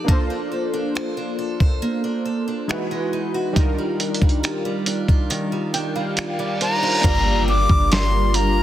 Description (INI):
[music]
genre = contemporary R&B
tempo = 69 BPM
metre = 4/4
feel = straight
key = G minor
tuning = A4 = 440 Hz
[part]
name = warm analog keys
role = accompaniment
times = 0.0-8.6 s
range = G3 to G5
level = -25 LUFS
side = equal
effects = chorus, phaser
[part]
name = picked steel-string acoustic guitar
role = arpeggios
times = 0.0-8.6 s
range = Eb3 to D5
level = -27 LUFS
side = right 2 dB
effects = tape echo
[part]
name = downlifter, reverse cymbal and impact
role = sound effects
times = 5.7-8.6 s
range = none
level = -28 LUFS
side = right 1 dB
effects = none
[part]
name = dusty soul sampler-style drum kit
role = drums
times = 0.1-8.5 s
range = crash cymbal, finger snaps, hi-hat, kick drum, snare drum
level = -20 LUFS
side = equal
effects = soft clipping on snare
[part]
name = reedy concert flute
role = melody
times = 6.6-8.6 s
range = Bb5 to D6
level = -21 LUFS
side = left 1 dB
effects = none
[part]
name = ethereal airy pad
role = sustained chords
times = 7.8-8.6 s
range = G3 to Bb4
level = -26 LUFS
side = left 2 dB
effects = ensemble chorus, built-in reverb, sidechain pumping
[part]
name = warm 808-style bass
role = bass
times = 7.0-8.6 s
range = G1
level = -20 LUFS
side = equal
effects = none
[sound]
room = light reverb, digital ambience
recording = dense, heavily limited modern master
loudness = -18 LUFS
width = side -12 dB against mid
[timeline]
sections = 0.0-7.0 A section; 7.0-8.6 B section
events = kick muted 5.3-7.0; reverse cymbal 6.1-7.0; impact 7.0-8.6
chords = 0.1 Bbmaj9; 2.7 Emaj9; 3.6 Ebmaj9; 7.0 Gm7